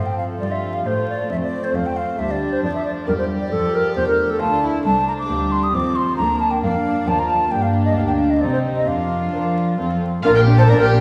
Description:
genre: classical, baroque-style concerto movement with solo episodes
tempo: 134 BPM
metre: 3/4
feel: straight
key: Bb major from 4.9 s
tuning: A4 = 438 Hz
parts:
  - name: bright baroque flute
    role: melody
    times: 0.0-10.9 s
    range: A4 to Eb6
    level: -23 LUFS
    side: equal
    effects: none
  - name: dark studio violin section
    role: melody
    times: 0.0-11.0 s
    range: G4 to Bb5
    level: -37 LUFS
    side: equal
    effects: none
  - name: warm chamber violin section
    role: second line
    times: 0.0-11.0 s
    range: C4 to Bb4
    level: -29 LUFS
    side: equal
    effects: none
  - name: lute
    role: accompaniment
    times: 0.0-11.0 s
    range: D2 to Bb4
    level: -30 LUFS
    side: equal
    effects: none
  - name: warm studio viola section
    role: accompaniment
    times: 0.0-11.0 s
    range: F3 to D4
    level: -29 LUFS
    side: equal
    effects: none
  - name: warm chamber cello section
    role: bass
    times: 0.0-11.0 s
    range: C2 to F3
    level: -27 LUFS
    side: equal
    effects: none
  - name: rich chamber double bass section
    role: bass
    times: 10.2-11.0 s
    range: Bb1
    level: -18 LUFS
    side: equal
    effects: none
room: wet recital hall reverb, RT60 1.6 s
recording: heard from further back in the room, vinyl crackle, small room ambience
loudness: -19 LUFS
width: mono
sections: 0.0-10.2 A section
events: none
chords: 0.0 F; 2.2 Dm; 4.9 F7/C; 6.2 Bb/D; 7.5 Gm; 8.4 Cm; 8.9 Bb/F; 9.8 F; 10.2 Bb

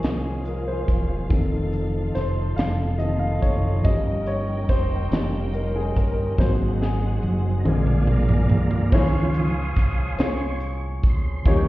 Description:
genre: slow gospel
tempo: 47 BPM (dotted quarters)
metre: 6/8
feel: straight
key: Db major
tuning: A4 = 440 Hz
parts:
  - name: warm upright piano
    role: accompaniment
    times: 0.0-11.7 s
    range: D3 to F5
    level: -27 LUFS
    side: left 2 dB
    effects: none
  - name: tonewheel organ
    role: sustained chords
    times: 0.0-11.7 s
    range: C3 to Eb6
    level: -28 LUFS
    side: right 1 dB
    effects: slow rotary speaker, chorus vibrato
  - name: warm studio string section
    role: sustained chords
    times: 0.0-8.9 s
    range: Db4 to G5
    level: -39 LUFS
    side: left 1 dB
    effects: none
  - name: fingered electric bass with an envelope filter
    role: bass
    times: 0.0-11.7 s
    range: Fb1 to Eb2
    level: -24 LUFS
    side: equal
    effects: none
  - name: crisp fusion drum kit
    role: drums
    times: 0.0-11.7 s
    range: crash cymbal, hi-hat, kick drum, snare drum, toms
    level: -22 LUFS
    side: equal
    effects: none
room: light reverb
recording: heard muffled through a wall, stone room reverb, EQ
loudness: -20 LUFS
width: side -17 dB against mid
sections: 0.0-8.9 A section; 8.9-11.7 B section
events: upright piano solo 0.0-8.9; drum fill 6.4-8.9; tonewheel organ solo 8.9-11.7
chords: 0.0 Dbmaj7; 1.3 F7; 3.8 Eb7; 6.4 Ab7; 7.7 Bb7; 8.9 Dbmaj7

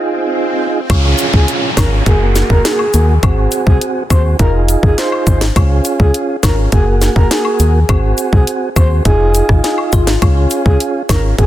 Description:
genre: dancehall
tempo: 103 BPM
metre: 4/4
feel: straight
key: Db major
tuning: A4 = 440 Hz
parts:
  - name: mellow tonewheel organ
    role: accompaniment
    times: 0.0-11.5 s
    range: Bb3 to Ab4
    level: -18 LUFS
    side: right 3 dB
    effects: fast rotary speaker
  - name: swell and downlifter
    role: sound effects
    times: 0.0-5.6 s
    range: none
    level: -21 LUFS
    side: equal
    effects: none
  - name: organ-like FM bass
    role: bass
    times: 0.9-11.5 s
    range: F1 to Eb2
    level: -13 LUFS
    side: equal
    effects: none
  - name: island pop drum kit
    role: drums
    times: 0.9-11.5 s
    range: hi-hat, kick drum, rim click, snare drum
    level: -13 LUFS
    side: equal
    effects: none
  - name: woodblock and cabasa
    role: percussion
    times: 0.9-11.2 s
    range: none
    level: -26 LUFS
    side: left 6 dB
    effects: none
  - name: breathy flute-like synth lead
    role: melody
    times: 1.3-11.5 s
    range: Ab4 to C5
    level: -20 LUFS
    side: equal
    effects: chorus, ping-pong delay
  - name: soft struck synth lead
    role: second line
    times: 9.6-10.5 s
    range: F4 to Ab4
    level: -22 LUFS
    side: left 8 dB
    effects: chorus, ping-pong delay
room: digital ambience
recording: dense, heavily limited modern master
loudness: -10 LUFS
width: side -13 dB against mid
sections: 0.9-11.5 A section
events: swell 0.0-0.9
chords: 0.0 Fm7; 0.9 Db; 2.1 Gbadd9; 3.2 Ab7; 4.4 Fm7; 5.6 Db; 6.7 Gbadd9; 7.9 Ab7; 9.1 Fm7; 10.2 Db

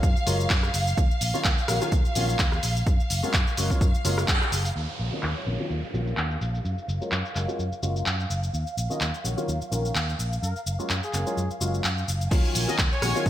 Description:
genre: filtered disco house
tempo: 127 BPM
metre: 4/4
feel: swing 55% on 16ths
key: Eb minor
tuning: A4 = 440 Hz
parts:
  - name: warm baby grand piano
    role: accompaniment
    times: 0.0-13.3 s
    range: Eb3 to Gb4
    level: -31 LUFS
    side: left 2 dB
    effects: phaser, sidechain pumping, low-pass filter
  - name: dark studio violin section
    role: sustained chords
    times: 0.0-13.3 s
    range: F5 to Ab5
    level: -34 LUFS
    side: equal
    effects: sidechain pumping, low-pass filter
  - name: fingered electric bass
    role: bass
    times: 0.0-13.3 s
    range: Gb1 to Gb2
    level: -28 LUFS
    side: equal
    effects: sidechain pumping, low-pass filter
  - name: electronic kick drum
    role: drums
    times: 0.0-4.4, 12.3-13.3 s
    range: none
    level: -23 LUFS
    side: equal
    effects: none
  - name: punchy analog drum machine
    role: drums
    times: 0.0-13.3 s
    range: crash cymbal, handclaps, hi-hat, rim click, shaker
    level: -29 LUFS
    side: equal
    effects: low-pass filter on snare, sidechain pumping on hats, low-pass filter on hats, sidechain pumping on perc, low-pass filter on perc, sidechain pumping on cymbals, low-pass filter on cymbals, low-pass filter on room, gated reverb
  - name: downlifter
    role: sound effects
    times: 4.8-8.5 s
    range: none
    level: -39 LUFS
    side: right 2 dB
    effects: none
  - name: clear trumpet section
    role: melody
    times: 5.1-5.7, 8.9-13.3 s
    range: Ab4 to Eb5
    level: -35 LUFS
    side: equal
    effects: sidechain pumping, low-pass filter, digital delay
room: light reverb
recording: bright 1980s-style digital production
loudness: -23 LUFS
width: side -12 dB against mid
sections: 0.0-4.8 A section; 4.8-12.3 B section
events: filter sweep 0.0-4.8, 4.8-12.3; band accent 4.3; filter sweep on drum 4.8-12.3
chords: 0.0 Gbmaj7; 1.0 Ebm7; 2.9 Gbmaj7; 4.8 Ebm7; 6.6 Gbmaj7; 8.5 Ebm7; 10.4 Gbmaj7; 12.3 Ebm7

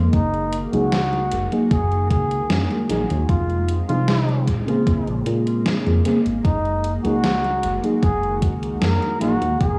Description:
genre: vaporwave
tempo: 76 BPM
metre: 4/4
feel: straight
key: Gb lydian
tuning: A4 = 438 Hz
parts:
  - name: soft string machine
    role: sustained chords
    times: 0.0-9.8 s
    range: Eb3 to Gb4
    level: -30 LUFS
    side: equal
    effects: phaser, ensemble chorus
  - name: chorused synth bass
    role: bass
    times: 0.0-9.8 s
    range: F1 to Bb2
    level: -25 LUFS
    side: equal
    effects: tube saturation
  - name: mellow flugelhorn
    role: melody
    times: 0.1-9.8 s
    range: Eb4 to Bb4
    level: -28 LUFS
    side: equal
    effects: tape echo
  - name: electronic kick drum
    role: drums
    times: 0.1-9.8 s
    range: none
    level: -22 LUFS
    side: equal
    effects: overdrive
  - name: gated 80s digital drum machine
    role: drums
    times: 0.1-9.8 s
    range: hi-hat, snare drum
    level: -28 LUFS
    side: equal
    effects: gated reverb, gated reverb snare, overdrive, analog delay
  - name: mellow FM electric piano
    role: accompaniment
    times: 0.7-9.3 s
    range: Db3 to Ab4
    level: -26 LUFS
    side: equal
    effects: lush chorus, analog delay
room: light reverb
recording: echo-heavy mix, small room ambience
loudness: -20 LUFS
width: mono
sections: 0.0-9.8 A section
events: none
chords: 0.1 Gb69; 3.3 Fm7; 4.5 Bbm9; 6.4 Gb69

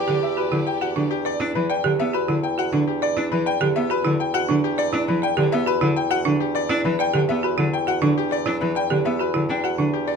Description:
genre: classical, minimalist pattern music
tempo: 102 BPM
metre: 3/4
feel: straight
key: E minor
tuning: A4 = 441 Hz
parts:
  - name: bright grand piano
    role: melody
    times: 0.0-10.2 s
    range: G4 to G5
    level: -25 LUFS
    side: left 9 dB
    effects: none
  - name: clear clarinet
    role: second line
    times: 0.0-1.1 s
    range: G4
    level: -30 LUFS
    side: right 6 dB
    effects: none
  - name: clear studio violin section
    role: sustained chords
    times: 0.0-1.1 s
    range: G4 to D5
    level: -32 LUFS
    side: left 3 dB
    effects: none
  - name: folk marimba with medium hard mallets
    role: arpeggios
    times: 0.0-10.2 s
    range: D4 to D5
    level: -24 LUFS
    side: right 7 dB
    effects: none
  - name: mellow bassoon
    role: bass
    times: 0.0-10.2 s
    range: E2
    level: -29 LUFS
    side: equal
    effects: none
  - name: rich cello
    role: accompaniment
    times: 0.1-9.9 s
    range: D3 to D4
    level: -24 LUFS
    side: left 1 dB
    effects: none
room: light reverb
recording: none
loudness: -19 LUFS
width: side -6 dB against mid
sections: 0.0-10.2 A section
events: none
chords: 0.0 Em7

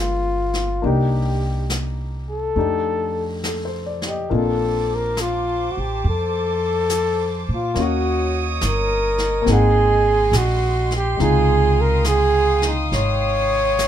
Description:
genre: jazz ballad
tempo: 70 BPM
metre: 4/4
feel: swing 68% on 8ths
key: Bb major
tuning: A4 = 439 Hz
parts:
  - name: breathy flugelhorn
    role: melody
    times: 0.0-13.9 s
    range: F4 to Db5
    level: -20 LUFS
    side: right 1 dB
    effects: none
  - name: warm baby grand piano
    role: accompaniment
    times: 0.0-13.9 s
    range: C3 to Gb5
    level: -26 LUFS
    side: left 5 dB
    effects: none
  - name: upright bass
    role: bass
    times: 0.0-13.9 s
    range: G1 to Bb2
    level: -22 LUFS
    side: right 1 dB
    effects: none
  - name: jazz brush drum kit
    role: drums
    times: 0.5-13.9 s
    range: brushed snare drum, hi-hat, snare drum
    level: -30 LUFS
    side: left 1 dB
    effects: none
  - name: warm chamber string section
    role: sustained chords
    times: 4.3-13.9 s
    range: Ab3 to Eb6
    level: -28 LUFS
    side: right 1 dB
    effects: none
room: light reverb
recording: minimal, uncompressed stereo recording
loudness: -17 LUFS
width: side -10 dB against mid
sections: 0.0-4.3 A section; 4.3-13.9 B section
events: none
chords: 0.0 G7b9; 0.8 Cm7; 2.6 F13; 4.3 Bbmaj9; 7.8 Ebm7; 9.5 Ab7; 11.2 Dbmaj9#11

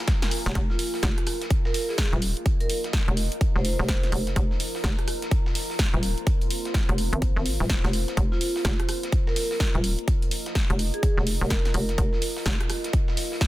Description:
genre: bass house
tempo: 126 BPM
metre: 4/4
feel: swing 62% on 16ths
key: F minor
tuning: A4 = 436 Hz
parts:
  - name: deep dark ambient pad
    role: texture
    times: 0.0-13.5 s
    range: F4 to Ab5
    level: -34 LUFS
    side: equal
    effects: chorus, built-in reverb, sidechain pumping
  - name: big-room dance drum kit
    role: drums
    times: 0.1-13.5 s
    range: hi-hat, rim click, snare drum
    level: -31 LUFS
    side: equal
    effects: none
  - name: dusty soul sampler-style drum kit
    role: drums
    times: 0.1-13.5 s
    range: hi-hat, snare drum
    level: -38 LUFS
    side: equal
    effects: high-pass filter on snare, sidechain pumping on hats, high-pass filter on hats, high-pass filter on room
  - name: electronic kick drum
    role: drums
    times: 0.1-13.5 s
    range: none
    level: -24 LUFS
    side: equal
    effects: none
  - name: hollow knocking FM bass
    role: bass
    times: 0.5-12.6 s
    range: Eb1 to Ab1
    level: -26 LUFS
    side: equal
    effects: tube saturation, sidechain pumping
  - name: vibraphone with medium hard mallets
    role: melody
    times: 0.7-4.2, 8.3-12.2 s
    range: F4 to C5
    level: -33 LUFS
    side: right 1 dB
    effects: dub echo
room: digital ambience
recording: dense, heavily limited modern master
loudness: -22 LUFS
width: side -16 dB against mid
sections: 0.0-13.5 A section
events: drum fill 0.1-0.6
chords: 0.0 Fm

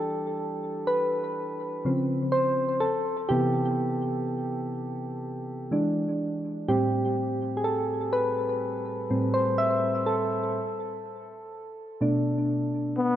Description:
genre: R&B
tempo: 62 BPM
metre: 4/4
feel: straight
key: A minor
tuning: A4 = 440 Hz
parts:
  - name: soft electric-piano-like synth keys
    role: accompaniment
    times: 0.0-13.2 s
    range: A2 to E5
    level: -25 LUFS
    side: equal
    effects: chorus, tape echo
  - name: brilliant trombone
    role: melody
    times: 13.0-13.2 s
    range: B3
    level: -22 LUFS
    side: left 3 dB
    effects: none
room: moderate echo chamber reverb, RT60 2.1 s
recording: echo-heavy mix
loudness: -25 LUFS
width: side -11 dB against mid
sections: 0.0-13.2 A section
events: synth keys solo 0.0-13.2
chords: 0.0 Em7; 1.8 C#maj7; 2.8 Cmaj7; 5.7 E7; 6.7 Am9; 10.6 Bm7

